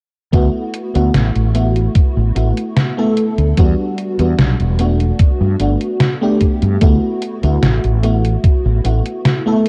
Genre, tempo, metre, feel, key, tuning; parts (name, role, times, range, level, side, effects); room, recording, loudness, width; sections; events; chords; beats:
vaporwave; 74 BPM; 4/4; straight; D major; A4 = 438 Hz
FM electric piano with soft pad layer; accompaniment; 0.3-9.7 s; G3 to A4; -20 LUFS; equal; phaser, ensemble chorus, tape echo
fretless electric bass; bass; 0.3-9.0 s; E1 to G2; -17 LUFS; equal
detuned 8-bit digital drum machine; drums; 0.3-9.7 s; hi-hat, snare drum; -20 LUFS; equal
electronic kick drum; drums; 0.3-8.6 s; -15 LUFS; equal
light reverb, digital ambience; dark, warm production, cassette tape; -15 LUFS; mono
0.3-9.7 A section
0.3 D69; 3.6 Em9; 5.2 Gmaj9; 6.8 D69 (rootless)
| 0.33 1.15 1.96 2.77 | 3.58 4.39 5.20 6.01 | 6.82 7.63 8.44 9.25